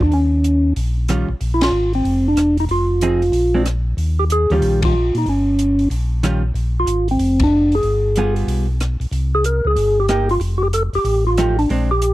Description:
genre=soul jazz organ trio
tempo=187 BPM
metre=4/4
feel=swing 64% on 8ths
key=unclear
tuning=A4 = 444 Hz
part: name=percussive tonewheel organ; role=melody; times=0.0-12.1 s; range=C4 to Bb4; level=-17 LUFS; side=equal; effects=slow rotary speaker
part: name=mellow tonewheel organ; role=bass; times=0.0-12.1 s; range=E1 to Bb2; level=-18 LUFS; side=equal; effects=slow rotary speaker
part: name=compact cocktail drum kit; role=drums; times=0.0-12.1 s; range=hi-hat, kick drum, ride cymbal, rim click, snare drum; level=-26 LUFS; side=equal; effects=none
part: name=vintage hollow-body jazz guitar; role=accompaniment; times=1.1-11.9 s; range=Eb3 to Ab4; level=-21 LUFS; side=right 2 dB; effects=none
room=studio ambience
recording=dry, close 1970s-style studio recording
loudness=-15 LUFS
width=side -16 dB against mid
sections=0.0-12.1 A section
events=band accent 1.6, 4.8, 7.4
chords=0.1 Eb9; 1.4 Bb9; 2.7 Fm7; 3.3 Bb9; 4.0 Eb9; 6.6 Bb9; 7.8 G7b9; 9.1 Cm7; 10.4 F9

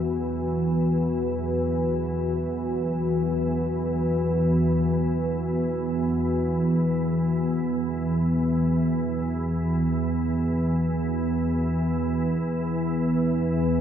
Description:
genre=dark ambient drone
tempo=free time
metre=none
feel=none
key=unclear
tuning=A4 = 439 Hz
part: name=sweeping resonant pad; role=sustained chords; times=0.0-13.8 s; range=E3 to F#4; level=-24 LUFS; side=right 1 dB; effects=chorus
part: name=organ-like drone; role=drone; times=0.0-13.8 s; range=E2 to E3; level=-26 LUFS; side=left 1 dB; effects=ensemble chorus, built-in reverb
room=wet lush hall reverb, RT60 2.7 s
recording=dreamy mix soaked in reverb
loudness=-22 LUFS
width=side -9 dB against mid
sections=0.0-13.8 A section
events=none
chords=0.0 Esus2

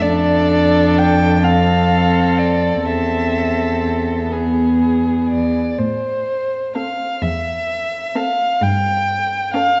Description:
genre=classical, slow romantic movement for string quartet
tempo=42 BPM (dotted quarters)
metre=6/8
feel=uneven beats, rubato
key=A minor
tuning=A4 = 443 Hz
part: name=dark violin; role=melody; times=0.0-9.8 s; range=C5 to G5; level=-22 LUFS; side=equal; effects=none
part: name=dark violin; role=second line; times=0.0-9.8 s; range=G#4 to A4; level=-25 LUFS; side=equal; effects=none
part: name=dark viola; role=accompaniment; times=0.0-9.8 s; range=B3 to D4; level=-22 LUFS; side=equal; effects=none
part: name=rich cello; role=bass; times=0.0-9.8 s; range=E2 to A2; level=-21 LUFS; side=equal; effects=none
room=wet concert hall reverb, RT60 2.1 s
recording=dark, warm production, nothing above 7.9 kHz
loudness=-17 LUFS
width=mono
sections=0.0-9.8 A section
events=none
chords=0.0 Dm/F; 1.4 F; 2.8 Am/E; 4.3 E; 5.8 Am; 8.6 A7/G

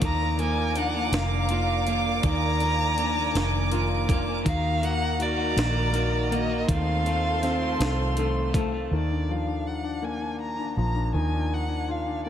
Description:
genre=six-eight pop ballad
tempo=54 BPM (dotted quarters)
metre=6/8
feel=straight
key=unclear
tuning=A4 = 440 Hz
part: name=warm chamber violin section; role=second line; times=0.0-8.9 s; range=A5 to D6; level=-32 LUFS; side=right 3 dB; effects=none
part: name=clear concert grand piano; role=accompaniment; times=0.0-12.3 s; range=Eb3 to Bb4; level=-30 LUFS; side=left 4 dB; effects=dub echo
part: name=muted studio string section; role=sustained chords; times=0.0-8.9 s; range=F3 to Bb5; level=-35 LUFS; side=right 1 dB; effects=none
part: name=electric guitar at the edge of break-up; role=arpeggios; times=0.0-8.9 s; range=Eb3 to Gb4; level=-34 LUFS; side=right 2 dB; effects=spring reverb, dub echo
part: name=vintage muted fingered electric bass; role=bass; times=0.0-12.3 s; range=F1 to Eb2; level=-27 LUFS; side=equal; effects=none
part: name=breakbeat sampler-style drum kit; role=drums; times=0.0-8.7 s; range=hi-hat, kick drum, snare drum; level=-30 LUFS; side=equal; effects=dub echo
part: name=warm violin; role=melody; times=0.1-12.3 s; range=D5 to Bb5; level=-30 LUFS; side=equal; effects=dub echo
room=light reverb, studio reverb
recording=echo-heavy mix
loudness=-23 LUFS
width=side -10 dB against mid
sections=0.0-8.9 A section; 8.9-12.3 B section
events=none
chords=0.0 Bb; 4.5 Ebm; 6.7 F/Eb; 8.9 Bb

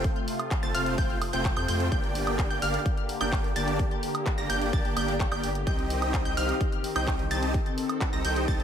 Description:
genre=EDM, festival progressive house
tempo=128 BPM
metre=4/4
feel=straight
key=G minor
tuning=A4 = 440 Hz
part: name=lush unison pad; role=sustained chords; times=0.0-8.6 s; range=C3 to A4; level=-33 LUFS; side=left 1 dB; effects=chorus, phaser, sidechain pumping
part: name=wide unison pluck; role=arpeggios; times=0.0-8.6 s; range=F6 to Bb6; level=-34 LUFS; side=equal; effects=cassette tape, sidechain pumping, ping-pong delay
part: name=big supersaw lead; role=riff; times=0.0-8.6 s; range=A3 to Bb5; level=-31 LUFS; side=equal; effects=sidechain pumping, ping-pong delay
part: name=saturated sub bass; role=bass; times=0.0-8.6 s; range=F1 to F2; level=-32 LUFS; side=equal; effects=sidechain pumping
part: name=big-room dance drum kit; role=drums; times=0.0-8.6 s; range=handclaps, hi-hat, woodblock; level=-35 LUFS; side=right 2 dB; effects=none
part: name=electronic kick drum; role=drums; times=0.0-8.6 s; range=none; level=-28 LUFS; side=equal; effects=none
room=moderate plate reverb, RT60 1.9 s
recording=dreamy mix soaked in reverb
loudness=-25 LUFS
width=side -8 dB against mid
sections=0.0-8.6 A section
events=none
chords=0.0 F; 1.9 Gm; 5.7 Cm

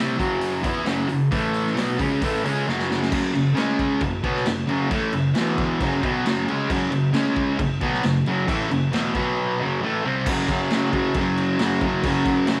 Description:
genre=garage rock duo or trio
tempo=134 BPM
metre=4/4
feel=straight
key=unclear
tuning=A4 = 440 Hz
part: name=fuzz guitar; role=riff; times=0.0-12.6 s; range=E2 to E4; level=-23 LUFS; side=equal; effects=distortion
part: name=raw garage drum kit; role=drums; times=0.2-12.6 s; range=crash cymbal, hi-hat, kick drum, snare drum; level=-30 LUFS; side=equal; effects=none
room=moderate echo chamber reverb, RT60 2.3 s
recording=none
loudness=-22 LUFS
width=mono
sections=0.0-3.1 A section; 3.1-10.3 B section; 10.3-12.6 C section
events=drum fill 2.7-3.1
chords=0.0 F#5; 1.3 A5; 1.8 F#5; 3.6 C#5; 4.0 F#5; 5.4 E5; 5.8 F#5; 7.1 C#5; 7.6 F#5; 9.1 B5; 9.6 F#5

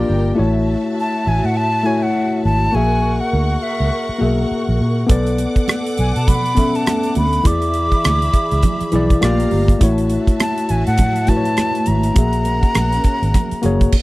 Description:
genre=lush 1970s-style soul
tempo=102 BPM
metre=4/4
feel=swing 58% on 16ths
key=unclear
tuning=A4 = 441 Hz
part: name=warm studio string section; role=second line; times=0.0-13.9 s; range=C#4 to D6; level=-27 LUFS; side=right 2 dB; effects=none
part: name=tine electric piano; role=accompaniment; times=0.0-14.0 s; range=E3 to E5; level=-20 LUFS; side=left 2 dB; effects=none
part: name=vintage muted fingered electric bass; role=bass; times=0.0-13.9 s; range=F#1 to B2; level=-18 LUFS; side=equal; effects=none
part: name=jazz flute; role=melody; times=1.0-13.9 s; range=E5 to D6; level=-21 LUFS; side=equal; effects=none
part: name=damped 70s drum kit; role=drums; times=5.1-14.0 s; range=crash cymbal, hi-hat, kick drum, rim click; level=-16 LUFS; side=equal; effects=none
part: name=congas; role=percussion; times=5.1-13.8 s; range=none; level=-26 LUFS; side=right 6 dB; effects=none
room=little or no reverb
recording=dry, close 1970s-style studio recording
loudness=-14 LUFS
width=side -19 dB against mid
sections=0.0-14.0 A section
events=none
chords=0.4 A6; 2.7 F#7/A#; 5.1 Bm9; 7.5 E7; 9.2 A#6; 9.8 A6; 12.2 F#7

